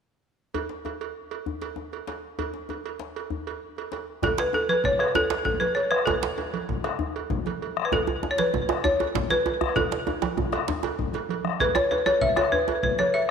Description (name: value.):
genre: west african traditional, West African drum ensemble.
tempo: 130 BPM (dotted quarters).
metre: 12/8.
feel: straight.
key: A major pentatonic.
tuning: A4 = 442 Hz.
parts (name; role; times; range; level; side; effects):
cowbell; percussion; 0.5-13.3 s; none; -34 LUFS; right 10 dB; none.
djembe; percussion; 0.5-13.1 s; none; -36 LUFS; left 5 dB; none.
balafon; melody; 4.2-13.3 s; A4 to E5; -23 LUFS; left 1 dB; tape echo.
bombo; percussion; 4.2-13.0 s; none; -31 LUFS; left 6 dB; none.
congas; percussion; 4.2-13.1 s; none; -35 LUFS; right 7 dB; none.
djembe; percussion; 4.2-12.8 s; none; -30 LUFS; right 6 dB; none.
room: wet echo chamber reverb, RT60 2.3 s.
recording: 1960s-style stereo with parts hard left and right.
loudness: -23 LUFS.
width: side -7 dB against mid.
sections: 0.5-4.2 A section; 4.2-13.3 B section.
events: drum fill 10.8-11.6.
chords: none.